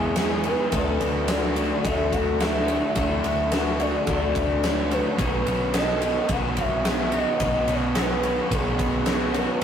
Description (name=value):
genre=rock, shoegaze and dream pop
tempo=108 BPM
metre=4/4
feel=straight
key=unclear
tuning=A4 = 439 Hz
part: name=pure breathy sine lead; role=melody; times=0.0-9.6 s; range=G#4 to F#5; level=-27 LUFS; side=equal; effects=chorus
part: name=ethereal airy pad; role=sustained chords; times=0.0-9.6 s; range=D4 to D#6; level=-35 LUFS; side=right 1 dB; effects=none
part: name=picked plugged-in twelve-string acoustic guitar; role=arpeggios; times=0.0-9.6 s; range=F#4 to C#5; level=-33 LUFS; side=left 6 dB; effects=none
part: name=crunchy overdriven guitar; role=riff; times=0.0-9.6 s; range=E2 to G#4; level=-29 LUFS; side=left 4 dB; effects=none
part: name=raw garage guitar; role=riff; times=0.0-9.6 s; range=B2 to E4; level=-28 LUFS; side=right 3 dB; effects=overdrive
part: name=vintage muted picked electric bass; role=bass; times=0.0-9.4 s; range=B1 to E2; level=-31 LUFS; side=equal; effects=none
part: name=huge arena drum kit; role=drums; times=0.2-9.6 s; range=kick drum, ride cymbal, snare drum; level=-27 LUFS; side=equal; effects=none
room=wet small room reverb, RT60 0.5 s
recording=rough rehearsal-room recording, tube saturation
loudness=-21 LUFS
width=side -8 dB against mid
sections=0.0-9.6 A section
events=none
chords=0.0 Emaj7; 0.7 Dmaj7; 5.2 Bsus2